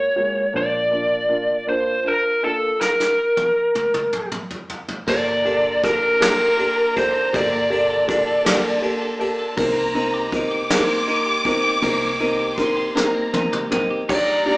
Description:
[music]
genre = six-eight pop ballad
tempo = 53 BPM (dotted quarters)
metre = 6/8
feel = straight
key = unclear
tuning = A4 = 439 Hz
[part]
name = lead guitar through a small cranked amp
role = melody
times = 0.0-8.8, 14.1-14.6 s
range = A4 to D5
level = -18 LUFS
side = equal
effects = overdrive
[part]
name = felt-muted upright piano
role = accompaniment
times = 0.0-14.6 s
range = Ab3 to Bb4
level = -23 LUFS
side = equal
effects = none
[part]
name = vintage muted fingered electric bass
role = bass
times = 0.0-14.6 s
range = Gb1 to Eb2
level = -41 LUFS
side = equal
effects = none
[part]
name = soft brush drum kit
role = drums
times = 2.8-14.6 s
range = crash cymbal, kick drum, ride cymbal, snare drum, toms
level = -25 LUFS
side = equal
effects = none
[part]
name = warm studio violin section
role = second line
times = 5.1-14.6 s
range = A5 to D6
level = -26 LUFS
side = equal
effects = none
[part]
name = twelve-string electric guitar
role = arpeggios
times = 5.1-14.6 s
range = G3 to A4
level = -28 LUFS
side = equal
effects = none
[sound]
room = wet large studio reverb, RT60 0.9 s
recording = band playing live in one room, small speaker sound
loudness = -17 LUFS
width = side -24 dB against mid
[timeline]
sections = 0.0-5.1 A section; 5.1-14.6 B section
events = drum fill 2.8-5.1, 13.0-14.1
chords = 0.0 Gbadd9; 0.5 Bb; 5.1 Gmadd9; 9.6 Cm7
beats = | 0.55 1.68 | 2.81 3.94 | 5.08 6.21 | 7.34 8.46 | 9.57 10.70 | 11.83 12.96 | 14.09

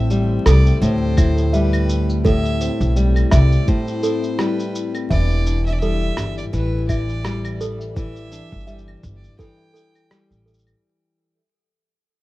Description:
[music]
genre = folktronica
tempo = 84 BPM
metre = 4/4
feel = swing 56% on 16ths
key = unclear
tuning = A4 = 440 Hz
[part]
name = warm violin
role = melody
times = 0.0-10.4 s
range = B4 to G5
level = -31 LUFS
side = right 1 dB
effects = tape echo
[part]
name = celesta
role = second line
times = 0.0-10.8 s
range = A4 to E5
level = -28 LUFS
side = right 2 dB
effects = vintage 12-bit sampler grit, tape echo
[part]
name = warbly tape-like pad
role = sustained chords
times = 0.0-10.8 s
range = E3 to G5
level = -28 LUFS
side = left 3 dB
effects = chorus, built-in reverb, phaser
[part]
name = flamenco guitar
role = arpeggios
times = 0.0-11.4 s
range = A2 to E4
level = -24 LUFS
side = left 1 dB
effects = none
[part]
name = upright bass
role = bass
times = 0.0-10.7 s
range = E1 to D2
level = -18 LUFS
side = equal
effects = none
[part]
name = electronic shaker, rim click and claves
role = drums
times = 0.1-10.8 s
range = none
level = -30 LUFS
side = equal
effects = none
[part]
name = electronic kick drum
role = drums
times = 1.2-9.6 s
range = none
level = -19 LUFS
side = equal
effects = none
[sound]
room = small room ambience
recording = rough home demo mix, vinyl crackle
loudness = -16 LUFS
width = side -17 dB against mid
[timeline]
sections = 0.0-10.8 A section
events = fade-out 3.2-10.8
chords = 0.0 Am7; 5.1 Em7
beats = 0.10 0.82 1.53 | 2.25 2.96 3.67 4.39 | 5.10 5.82 6.53 7.25 | 7.96 8.67 9.39 10.10

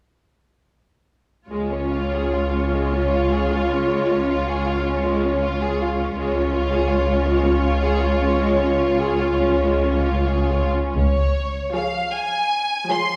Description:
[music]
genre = classical, slow romantic movement for string orchestra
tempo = 41-56 BPM (dotted quarters)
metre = 12/8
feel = rubato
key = Db major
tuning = A4 = 440 Hz
[part]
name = rich studio violin section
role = melody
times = 1.5-13.2 s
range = Db5 to C6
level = -27 LUFS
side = equal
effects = none
[part]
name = rich studio violin section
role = second line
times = 1.5-13.2 s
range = Ab3 to Db5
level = -28 LUFS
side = equal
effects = none
[part]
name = rich studio viola section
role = accompaniment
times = 1.5-13.2 s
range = F3 to F4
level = -27 LUFS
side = equal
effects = none
[part]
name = rich studio cello section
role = bass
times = 1.5-11.9 s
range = Db2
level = -25 LUFS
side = equal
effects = none
[part]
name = clear studio double bass section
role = bass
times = 11.0-11.9 s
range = Db2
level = -25 LUFS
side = equal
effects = none
[sound]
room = wet scoring stage reverb, RT60 1.6 s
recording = heard from further back in the room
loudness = -21 LUFS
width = mono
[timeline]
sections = 1.5-11.0 A section; 11.0-13.2 B section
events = none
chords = 1.5 Db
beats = | 1.49 2.73 3.90 5.05 | 6.17 7.26 8.41 9.62 | 10.96 12.13

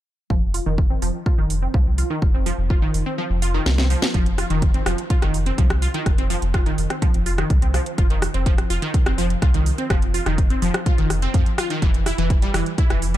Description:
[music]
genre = melodic techno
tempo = 125 BPM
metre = 4/4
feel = straight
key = unclear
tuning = A4 = 442 Hz
[part]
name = wide unison pluck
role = arpeggios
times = 0.3-13.2 s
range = Eb3 to F4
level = -25 LUFS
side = equal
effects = phaser, sidechain pumping, ping-pong delay
[part]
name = round analog bass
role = bass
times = 0.3-13.2 s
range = F1 to F2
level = -22 LUFS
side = equal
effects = sidechain pumping
[part]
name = electronic kick drum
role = drums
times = 0.3-12.9 s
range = none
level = -19 LUFS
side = equal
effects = none
[part]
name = house drum kit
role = drums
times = 0.5-13.2 s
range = hi-hat, rim click, snare drum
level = -27 LUFS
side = equal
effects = none
[sound]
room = digital ambience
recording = dark, warm production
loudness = -18 LUFS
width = side -13 dB against mid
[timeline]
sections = 0.3-4.1 A section; 4.1-13.2 B section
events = filter sweep on analog synth bass 0.3-4.1; filter sweep on synth pluck 0.3-4.1; kick drops out 3.2-4.1; drum fill 3.7-4.1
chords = 0.3 F5; 11.8 N.C.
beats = | 0.30 0.78 1.26 1.74 | 2.22 2.70 3.18 3.66 | 4.14 4.62 5.10 5.58 | 6.06 6.54 7.02 7.50 | 7.98 8.46 8.94 9.42 | 9.90 10.38 10.86 11.34 | 11.82 12.30 12.78

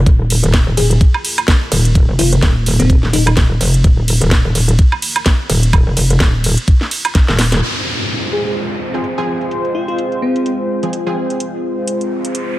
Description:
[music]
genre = bass house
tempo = 127 BPM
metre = 4/4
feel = swing 57% on 16ths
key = F minor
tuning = A4 = 436 Hz
[part]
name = sweeping resonant pad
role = sustained chords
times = 0.0-12.6 s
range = Eb3 to C5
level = -23 LUFS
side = equal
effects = chorus, sidechain pumping
[part]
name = metallic wobble bass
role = bass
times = 0.0-7.6 s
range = Eb1 to F1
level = -13 LUFS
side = equal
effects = chorus, overdrive, sidechain pumping
[part]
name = electronic kick drum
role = drums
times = 0.1-7.3 s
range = none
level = -11 LUFS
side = equal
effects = small room ambience
[part]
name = garage drum kit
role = drums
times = 0.1-12.5 s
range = crash cymbal, hi-hat, ride cymbal, snare drum, woodblock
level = -18 LUFS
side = right 1 dB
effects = low-pass filter on hats, small room ambience, low-pass filter on snare, low-pass filter on perc, low-pass filter on cymbals
[part]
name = bell-like FM electric piano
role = melody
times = 0.8-3.3, 8.3-10.6 s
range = C4 to Ab4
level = -21 LUFS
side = left 2 dB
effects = chorus, dub echo
[part]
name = downlifter and riser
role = sound effects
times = 7.6-12.6 s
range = none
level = -24 LUFS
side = equal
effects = none
[part]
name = orchestra-hit-like synth stab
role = stabs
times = 8.9-12.6 s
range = F3 to Ab4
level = -23 LUFS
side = equal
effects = built-in reverb, sidechain pumping, dub echo
[sound]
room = little or no reverb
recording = none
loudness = -12 LUFS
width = side -16 dB against mid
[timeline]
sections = 0.0-7.6 A section; 7.6-12.6 B section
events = drop 0.0-7.6; drum fill 7.2-7.6; band accent 7.5; filter sweep on drum 7.6-12.6; riser 11.9-12.6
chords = 0.1 Ebsus2; 7.6 Fm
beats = | 0.06 0.54 1.01 1.48 | 1.95 2.43 2.90 3.37 | 3.84 4.32 4.79 5.26 | 5.73 6.21 6.68 7.15 | 7.62 8.10 8.57 9.04 | 9.51 9.98 10.46 10.93 | 11.40 11.88 12.35

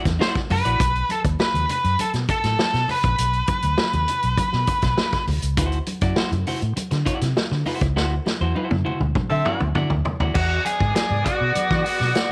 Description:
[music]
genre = funk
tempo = 100 BPM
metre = 4/4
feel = straight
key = unclear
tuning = A4 = 440 Hz
[part]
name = electric guitar at the edge of break-up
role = accompaniment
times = 0.0-0.8, 5.6-10.4 s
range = E4 to D5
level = -31 LUFS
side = equal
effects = none
[part]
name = vintage muted fingered electric bass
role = bass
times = 0.1-12.1 s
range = A#1 to E3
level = -25 LUFS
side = equal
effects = none
[part]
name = vintage drum kit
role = drums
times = 0.1-12.3 s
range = crash cymbal, hi-hat, kick drum, snare drum, toms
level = -27 LUFS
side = equal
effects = none
[part]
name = congas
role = percussion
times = 0.1-12.3 s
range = none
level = -36 LUFS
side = equal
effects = none
[part]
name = octave-fuzz lead guitar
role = melody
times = 0.2-5.2, 10.3-12.3 s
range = F#4 to C5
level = -25 LUFS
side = equal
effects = distortion
[part]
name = warm horn section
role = second line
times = 9.3-12.3 s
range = B3 to E5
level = -29 LUFS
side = equal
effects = none
[sound]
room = studio reverb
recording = none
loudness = -22 LUFS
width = mono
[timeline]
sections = 0.0-10.4 A section; 10.4-12.3 B section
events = drum fill 8.0-10.4; band accent 8.0-10.4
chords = 0.0 Dadd9; 0.8 B; 5.6 D9; 10.4 E9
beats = 0.20 | 0.80 1.39 1.99 2.58 | 3.18 3.78 4.38 4.97 | 5.57 6.17 6.77 7.37 | 7.96 8.56 9.16 9.76 | 10.36 10.96 11.56 12.16

